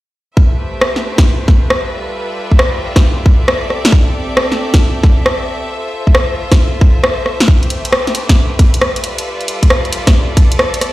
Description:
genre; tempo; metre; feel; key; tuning
UK garage, two-step garage; 135 BPM; 4/4; swing 66% on 16ths; A minor; A4 = 439 Hz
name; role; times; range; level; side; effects
bright studio violin section; sustained chords; 0.4-10.9 s; G3 to E5; -21 LUFS; equal; sidechain pumping
electronic kick drum; drums; 0.4-10.5 s; none; -8 LUFS; equal; overdrive
garage drum kit; drums; 0.8-10.9 s; hi-hat, rim click, snare drum; -15 LUFS; equal; overdrive
room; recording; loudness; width
light reverb; played on a big sound system in a bare room, stone room reverb; -10 LUFS; side -17 dB against mid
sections
0.4-10.9 A section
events
none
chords
0.4 Am9; 1.9 G13; 3.7 C69; 5.7 Fmaj7; 7.5 Am9; 9.0 G13

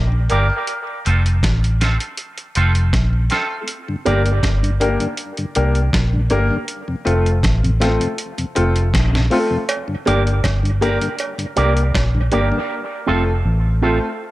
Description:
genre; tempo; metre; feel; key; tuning
dub reggae; 80 BPM; 4/4; straight; G minor; A4 = 439 Hz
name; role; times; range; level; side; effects
vintage muted fingered electric bass; bass; 0.0-14.0 s; F1 to C2; -17 LUFS; equal; none
mellow tonewheel organ; accompaniment; 0.1-12.6 s; F2 to G4; -26 LUFS; left 2 dB; slow rotary speaker, high-pass filter, dub echo
electric guitar with an envelope filter; accompaniment; 0.3-4.2, 10.1-14.0 s; C4 to D5; -24 LUFS; right 5 dB; high-pass filter, dub echo
warm upright piano; stabs; 0.3-14.0 s; A3 to Bb4; -23 LUFS; left 2 dB; high-pass filter, dub echo
dusty soul sampler-style drum kit; drums; 0.3-12.5 s; hi-hat, kick drum, snare drum; -22 LUFS; equal; none
cowbell; percussion; 9.7-12.1 s; none; -26 LUFS; right 4 dB; dub echo
room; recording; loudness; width
light reverb; none; -16 LUFS; side -17 dB against mid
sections
0.0-14.3 A section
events
filter sweep 0.0-3.7; part muted 12.7-14.3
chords
0.0 Gm; 0.7 F; 3.7 Gm; 6.7 F; 9.7 Gm; 12.7 F

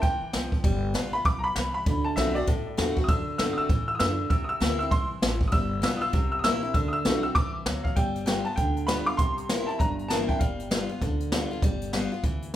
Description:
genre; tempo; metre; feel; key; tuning
rockabilly; 196 BPM; 4/4; swing 62% on 8ths; G mixolydian; A4 = 442 Hz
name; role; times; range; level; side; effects
clear upright piano; melody; 0.0-11.3 s; D5 to E6; -29 LUFS; equal; analog delay
picked steel-string acoustic guitar; accompaniment; 0.0-12.5 s; G2 to F#4; -31 LUFS; left 1 dB; none
upright bass; bass; 0.0-12.6 s; G1 to A2; -33 LUFS; equal; none
jazz brush drum kit; drums; 0.0-12.5 s; hi-hat, kick drum, snare drum; -27 LUFS; equal; none
room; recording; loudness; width
moderate large studio reverb, RT60 0.9 s; band playing live in one room; -24 LUFS; side -12 dB against mid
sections
0.0-8.0 A section; 8.0-12.6 B section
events
upright piano solo 0.0-8.0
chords
0.0 C; 0.6 G7; 1.9 D7; 4.3 C7; 5.5 G7; 6.1 C7; 6.7 D7; 8.0 G7; 9.2 C7; 10.4 G7

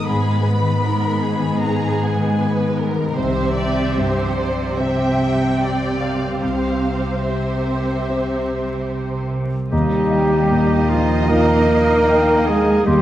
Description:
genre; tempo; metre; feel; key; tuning
cinematic, emotional film score for orchestra; 71-78 BPM; 4/4; rubato; Eb major; A4 = 441 Hz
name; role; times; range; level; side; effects
warm symphonic violin section; melody; 0.0-13.0 s; D5 to Cb6; -29 LUFS; left 1 dB; none
warm symphonic violin section; second line; 0.0-13.0 s; Ab4 to E5; -26 LUFS; equal; none
warm concert grand piano; accompaniment; 0.0-13.0 s; C2 to C5; -23 LUFS; equal; none
warm symphonic viola section; accompaniment; 0.0-13.0 s; Ab3 to G4; -26 LUFS; right 1 dB; none
concert harp; arpeggios; 0.0-13.0 s; Ab2 to Bb5; -25 LUFS; left 4 dB; none
rich symphonic cello section; bass; 0.0-13.0 s; Ab2 to Bb3; -23 LUFS; right 2 dB; none
concert flute; second line; 9.7-13.0 s; Bb5 to C6; -26 LUFS; right 1 dB; none
mellow clarinet; second line; 9.7-13.0 s; Eb5 to G5; -28 LUFS; left 1 dB; none
warm oboe; second line; 9.7-13.0 s; F4 to Bb4; -26 LUFS; right 2 dB; none
mellow French horn section; sustained chords; 9.7-13.0 s; F4 to Bb4; -18 LUFS; equal; none
warm symphonic double bass section; bass; 9.7-13.0 s; Eb2; -23 LUFS; right 1 dB; none
room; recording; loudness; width
wet scoring stage reverb, RT60 1.8 s; dark, warm production, vinyl crackle; -16 LUFS; side -12 dB against mid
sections
0.0-9.7 A section; 9.7-13.0 A section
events
none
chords
0.0 Abm; 3.2 C; 9.7 Ebsus2

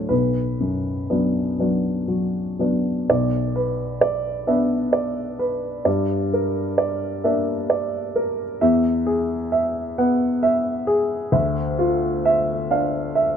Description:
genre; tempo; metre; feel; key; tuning
neoclassical minimalist piano; 44 BPM (dotted quarters); 6/8; rubato; B minor; A4 = 440 Hz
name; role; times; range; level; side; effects
warm baby grand piano; solo; 0.0-13.4 s; B1 to F#5; -19 LUFS; equal; none
room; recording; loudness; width
light reverb; dark, warm production; -19 LUFS; side -8 dB against mid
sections
0.0-3.1 A section; 3.1-13.4 B section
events
none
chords
0.1 Bm; 5.9 Gm; 8.6 E; 11.3 Dmadd9

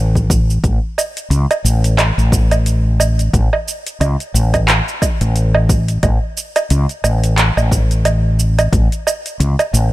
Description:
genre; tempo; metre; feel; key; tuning
organic downtempo; 89 BPM; 4/4; swing 57% on 16ths; A major; A4 = 439 Hz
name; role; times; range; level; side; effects
mellow fretless electric bass; bass; 0.0-9.9 s; A1 to C#2; -14 LUFS; equal; tube saturation
deep house drum kit; drums; 0.2-9.9 s; cabasa, handclaps, hi-hat, woodblock; -18 LUFS; right 2 dB; overdrive
electronic kick drum; drums; 0.2-8.9 s; none; -17 LUFS; equal; overdrive
room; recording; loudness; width
little or no reverb; none; -13 LUFS; side -17 dB against mid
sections
0.0-9.9 A section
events
none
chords
none

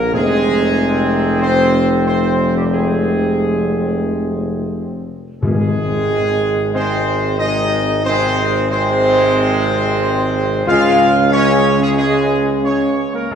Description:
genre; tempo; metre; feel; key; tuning
classical; 91 BPM; 4/4; straight; Ab major; A4 = 440 Hz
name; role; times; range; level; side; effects
dark trumpet section; melody; 0.0-13.3 s; G4 to F5; -19 LUFS; right 2 dB; none
bright trombone section; sustained chords; 0.0-13.3 s; C3 to C4; -22 LUFS; right 2 dB; none
mellow French horn section; sustained chords; 0.0-13.3 s; G3 to F4; -20 LUFS; left 2 dB; none
mellow tuba; bass; 0.0-13.3 s; F1 to Db2; -18 LUFS; equal; none
timpani; percussion; 5.4-6.4, 13.3 s; Ab2; -20 LUFS; left 2 dB; none
room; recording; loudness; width
wet concert hall reverb, RT60 1.9 s; heard from further back in the room; -13 LUFS; side -8 dB against mid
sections
0.0-13.3 A section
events
none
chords
0.1 Fm; 5.4 Ab; 10.7 Db

